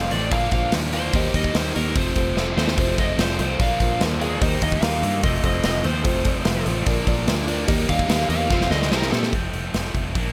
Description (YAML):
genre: classic rock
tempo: 146 BPM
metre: 4/4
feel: straight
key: F mixolydian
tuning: A4 = 439 Hz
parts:
  - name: overdriven slide guitar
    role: melody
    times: 0.0-9.3 s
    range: Ab4 to F5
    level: -30 LUFS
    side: equal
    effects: digital delay
  - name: dark baby grand piano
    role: accompaniment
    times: 0.0-9.3 s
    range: E4 to F5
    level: -34 LUFS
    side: equal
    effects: none
  - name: distorted electric guitar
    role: riff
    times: 0.0-10.3 s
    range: F2 to F4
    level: -31 LUFS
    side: equal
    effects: distortion
  - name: overdriven semi-hollow guitar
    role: riff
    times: 0.0-9.3 s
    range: F2 to G4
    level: -32 LUFS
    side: equal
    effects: phaser
  - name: fingered electric bass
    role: bass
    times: 0.0-10.3 s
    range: F1 to Bb2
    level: -28 LUFS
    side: equal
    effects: none
  - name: big rock drum kit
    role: drums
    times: 0.1-10.3 s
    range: hi-hat, kick drum, snare drum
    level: -26 LUFS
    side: equal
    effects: none
  - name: picked steel-string acoustic guitar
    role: accompaniment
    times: 2.8-10.3 s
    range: F2 to A4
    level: -38 LUFS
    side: equal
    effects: none
room: light reverb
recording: none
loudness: -21 LUFS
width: mono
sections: 0.0-9.3 A section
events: electric slide guitar solo 0.0-9.3; drum fill 2.4-2.8, 8.5-9.3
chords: 0.3 Bb; 1.1 Eb; 2.0 F; 3.6 Bb; 4.4 Eb; 5.2 F; 6.9 Bb; 7.7 Eb; 8.5 F; 8.9 C; 9.3 F